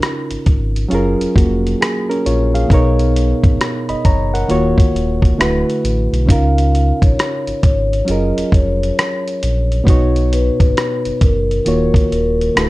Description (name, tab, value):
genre	lo-fi hip hop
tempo	67 BPM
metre	4/4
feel	swing 63% on 16ths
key	unclear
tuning	A4 = 440 Hz
part	barky reed electric piano	accompaniment	0.0-12.7 s	Cb3 to Cb6	-18 LUFS	right 1 dB	overdrive, plate reverb
part	dusty soul sampler-style drum kit	drums	0.0-12.7 s	hi-hat, kick drum, rim click	-15 LUFS	equal	none
part	sub bass with octave	bass	0.3-12.7 s	D1 to Db2	-17 LUFS	equal	none
part	vibraphone with soft mallets	melody	6.3-12.7 s	Bb4 to F5	-20 LUFS	left 2 dB	plate reverb
room	light reverb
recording	none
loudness	-13 LUFS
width	side -19 dB against mid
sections	0.0-12.7 A section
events	none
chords	0.0 Db69; 0.9 Gbmaj7; 2.7 Cbmaj7; 4.5 Ebm7; 5.4 D69; 6.3 Db69; 8.1 Gbmaj7; 9.9 Cb; 11.7 Ebm7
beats	0.02 0.91 1.81 | 2.70 3.60 4.49 5.39 | 6.28 7.18 8.07 8.97 | 9.87 10.76 11.66 12.55